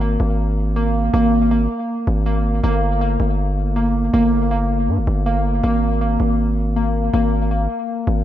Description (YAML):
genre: hip hop, trap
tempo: 160 BPM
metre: 4/4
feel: half-time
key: unclear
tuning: A4 = 438 Hz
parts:
  - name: glassy digital keys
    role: arpeggios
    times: 0.0-8.2 s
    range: Bb3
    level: -20 LUFS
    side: equal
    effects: chorus, tape echo
  - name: distorted 808-style bass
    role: bass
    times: 0.0-8.2 s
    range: G1 to G2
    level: -19 LUFS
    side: equal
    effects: distortion
room: light reverb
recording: none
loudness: -16 LUFS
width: side -12 dB against mid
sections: 0.0-2.6 A section; 2.6-8.2 B section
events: none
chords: 0.0 Absus2; 2.6 Gm; 5.6 Absus2